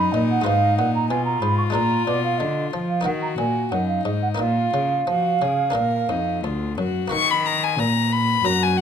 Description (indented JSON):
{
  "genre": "classical, baroque-style sonata movement with continuo",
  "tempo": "91 BPM",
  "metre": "4/4",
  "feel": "straight",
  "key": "Eb minor",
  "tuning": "A4 = 441 Hz",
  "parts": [
    { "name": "rich violin", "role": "melody", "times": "0.0-8.8 s", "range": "Eb4 to Db6", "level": "-24 LUFS", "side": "left 9 dB", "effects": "none" },
    { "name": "baroque flute", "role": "second line", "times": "0.0-8.8 s", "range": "Gb4 to Db6", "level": "-23 LUFS", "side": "right 4 dB", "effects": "none" },
    { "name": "buff-stop harpsichord", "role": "accompaniment", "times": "0.0-8.8 s", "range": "D2 to B4", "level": "-30 LUFS", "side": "left 3 dB", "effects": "none" },
    { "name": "rich cello", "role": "bass", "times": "0.0-8.8 s", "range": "D2 to F3", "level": "-24 LUFS", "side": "right 1 dB", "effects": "none" }
  ],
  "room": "light reverb",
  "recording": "close, detailed microphones",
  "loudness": "-19 LUFS",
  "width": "side -8 dB against mid",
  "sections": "0.0-7.1 A section; 7.1-8.8 B section",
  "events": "none",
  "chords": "0.5 Fdim/Ab; 1.8 Bb7; 3.1 Ebm; 4.4 Bbsus4; 5.8 Bb; 7.1 Ebm"
}